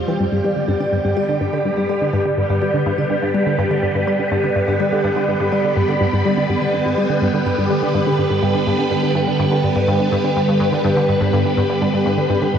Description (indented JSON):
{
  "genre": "ambient, sequencer-driven space music",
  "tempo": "124 BPM",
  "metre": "4/4",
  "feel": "straight",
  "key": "G major",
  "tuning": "A4 = 445 Hz",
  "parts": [
    { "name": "phased string machine", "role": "sustained chords", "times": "0.0-12.6 s", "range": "D3 to C5", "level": "-19 LUFS", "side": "right 1 dB", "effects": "ensemble chorus, phaser" },
    { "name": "vibraphone with medium mallets", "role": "arpeggios", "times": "0.1-12.5 s", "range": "G4 to B5", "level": "-22 LUFS", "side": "equal", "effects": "auto-pan, tape echo" },
    { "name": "tight sequenced synth", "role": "riff", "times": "0.1-12.6 s", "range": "G2 to G3", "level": "-20 LUFS", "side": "equal", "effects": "chorus, tape echo" }
  ],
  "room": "wet concert hall reverb, RT60 2.0 s, small room ambience",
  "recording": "worn, warbling old tape, cassette tape, warbly pitch drift",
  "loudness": "-15 LUFS",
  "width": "side -8 dB against mid",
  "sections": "0.0-12.6 A section",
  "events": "filter sweep on synth arpeggio sound 0.0-12.6",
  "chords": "0.2 G",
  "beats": "| 0.20 0.69 1.17 1.66 | 2.14 2.62 3.11 3.59 | 4.08 4.56 5.04 5.53 | 6.01 6.49 6.98 7.46 | 7.95 8.43 8.91 9.40 | 9.88 10.37 10.85 11.33 | 11.82 12.30"
}